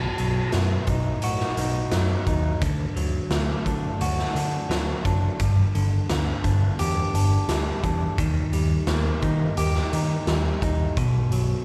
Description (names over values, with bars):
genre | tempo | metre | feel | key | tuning
quiet-loud alternative rock | 86 BPM | 4/4 | straight | unclear | A4 = 440 Hz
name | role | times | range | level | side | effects
clean electric guitar | arpeggios | 0.0-11.6 s | G2 to G4 | -30 LUFS | equal | none
overdriven picked electric bass | bass | 0.0-11.5 s | F#1 to D#3 | -26 LUFS | equal | none
raw garage drum kit | drums | 0.2-11.5 s | hi-hat, kick drum, snare drum | -30 LUFS | equal | none
room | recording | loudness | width
light reverb | live gig heard through the venue's PA, recital hall reverb | -24 LUFS | mono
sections
0.0-11.6 A section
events
none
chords
0.0 B; 2.6 D; 5.4 G; 8.2 D#; 11.0 B5